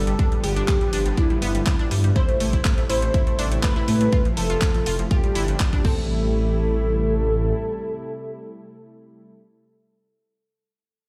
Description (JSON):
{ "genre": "progressive house", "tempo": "122 BPM", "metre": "4/4", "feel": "straight", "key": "A minor", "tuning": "A4 = 441 Hz", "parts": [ { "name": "expressive synth lead", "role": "melody", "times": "0.0-9.3 s", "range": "E4 to C5", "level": "-30 LUFS", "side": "equal", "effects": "analog chorus, sidechain pumping, digital delay" }, { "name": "glassy wavetable pluck", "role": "second line", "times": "0.0-9.3 s", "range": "E4 to C5", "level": "-35 LUFS", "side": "equal", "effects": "chorus, sidechain pumping, digital delay" }, { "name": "lush unison pad", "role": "sustained chords", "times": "0.0-9.3 s", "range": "C3 to E5", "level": "-34 LUFS", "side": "equal", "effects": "chorus, sidechain pumping" }, { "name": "dark detuned saw bass", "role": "bass", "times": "0.0-7.5 s", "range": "F1 to A2", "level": "-25 LUFS", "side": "equal", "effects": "sidechain pumping" }, { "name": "analog pluck", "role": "arpeggios", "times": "0.1-9.3 s", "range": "F3 to F4", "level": "-32 LUFS", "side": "equal", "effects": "chorus, vintage 12-bit sampler grit, sidechain pumping, digital delay" }, { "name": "house drum kit", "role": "drums", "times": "0.1-5.9 s", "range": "crash cymbal, handclaps, hi-hat", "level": "-33 LUFS", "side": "equal", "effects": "none" }, { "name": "electronic kick drum", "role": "drums", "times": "0.2-5.9 s", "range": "none", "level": "-23 LUFS", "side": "equal", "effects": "none" } ], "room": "digital ambience", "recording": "played on a big sound system in a bare room, stone room reverb", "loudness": "-21 LUFS", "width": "mono", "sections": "0.0-6.1 A section; 6.1-10.0 B section", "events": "drop 0.0-6.1", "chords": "0.2 G7; 2.2 Am7; 4.1 Fmaj7; 5.1 G7sus4; 5.8 Am7" }